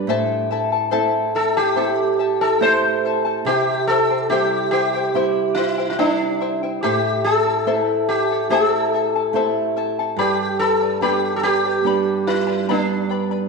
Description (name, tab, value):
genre	andean folk, Andean ensemble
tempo	71 BPM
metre	4/4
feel	straight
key	A minor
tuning	A4 = 439 Hz
part	charango	accompaniment	0.0-13.5 s	E4 to B5	-23 LUFS	left 9 dB	none
part	nylon-string guitar	accompaniment	0.0-13.5 s	G2 to E4	-24 LUFS	right 7 dB	none
part	sitar	melody	1.4-13.3 s	D4 to C5	-19 LUFS	right 1 dB	none
room	wet echo chamber reverb, RT60 1.5 s, studio reverb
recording	1960s-style stereo with parts hard left and right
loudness	-17 LUFS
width	side -3 dB against mid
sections	0.0-13.5 A section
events	none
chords	0.1 Am; 3.5 C; 6.8 Am; 10.2 G